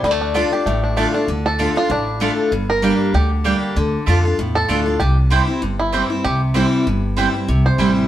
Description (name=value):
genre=bluegrass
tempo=193 BPM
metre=4/4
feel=swing 55% on 8ths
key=D minor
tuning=A4 = 440 Hz
part: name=bluegrass banjo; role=melody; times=0.0-8.1 s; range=G3 to C5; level=-22 LUFS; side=right 2 dB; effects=none
part: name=picked steel-string acoustic guitar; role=melody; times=0.0-1.0 s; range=D5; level=-23 LUFS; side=left 8 dB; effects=none
part: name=picked steel-string acoustic guitar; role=accompaniment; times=0.0-8.1 s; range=G2 to G4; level=-20 LUFS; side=equal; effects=none
part: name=upright bass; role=bass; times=0.0-8.1 s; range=G1 to F2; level=-20 LUFS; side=equal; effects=none
part: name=mandolin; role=stabs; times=0.3-7.9 s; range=A3 to A5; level=-24 LUFS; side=right 5 dB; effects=none
room=wet stone room reverb, RT60 1.1 s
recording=band playing live in one room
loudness=-15 LUFS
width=side -12 dB against mid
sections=0.0-1.3 A section; 1.3-8.1 B section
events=five-string banjo solo 1.3-8.1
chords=0.0 Dm; 2.5 Gm; 3.8 Dm; 5.0 C